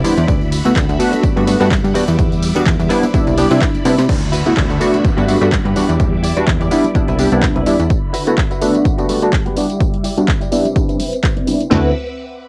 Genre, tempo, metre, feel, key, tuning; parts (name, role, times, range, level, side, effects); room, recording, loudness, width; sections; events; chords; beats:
filtered disco house; 126 BPM; 4/4; swing 56% on 16ths; D mixolydian; A4 = 440 Hz
funky polysynth comp; accompaniment; 0.0-11.9 s; G3 to G4; -18 LUFS; equal; chorus, phaser, sidechain pumping, low-pass filter, cassette tape
phased string machine; sustained chords; 0.0-11.9 s; D3 to D6; -27 LUFS; equal; ensemble chorus, phaser, sidechain pumping, low-pass filter, cassette tape
direct-recorded clean electric guitar; riff; 0.0-11.9 s; C3 to E5; -28 LUFS; equal; sidechain pumping, low-pass filter, cassette tape
plucky analog bass; bass; 0.0-7.9, 11.7-11.9 s; C2 to C3; -19 LUFS; equal; transformer saturation, sidechain pumping, low-pass filter
house drum kit; drums; 0.0-11.7 s; crash cymbal, handclaps, hi-hat, ride cymbal, snare drum, tambourine; -28 LUFS; equal; sidechain pumping on hats, cassette tape, sidechain pumping on cymbals, sidechain pumping on perc
tambourine and congas; percussion; 0.2-11.7 s; -34 LUFS; equal
punchy analog drum machine; drums; 0.3-11.8 s; kick drum, snare drum, toms; -20 LUFS; equal; cassette tape
downlifter; sound effects; 4.1-7.9 s; -33 LUFS; equal
light reverb; home recording on cassette; -15 LUFS; mono
0.0-4.1 A section; 4.1-11.7 B section
drop 0.0-4.1; clean electric guitar fill 0.0; drum fill 3.9; filter sweep 4.1-11.7
0.3 D69; 1.2 Gmaj7; 1.9 Em7; 2.9 Cmaj9; 4.1 D69; 5.0 Gmaj7; 5.8 Em7; 6.7 Cmaj9; 7.9 D69; 8.9 Gmaj7; 9.6 Em7; 10.5 Cmaj9; 11.7 D69
| 0.28 0.76 1.24 1.71 | 2.19 2.66 3.14 3.62 | 4.09 4.57 5.04 5.52 | 6.00 6.47 6.95 7.43 | 7.90 8.38 8.85 9.33 | 9.81 10.28 10.76 11.23 | 11.71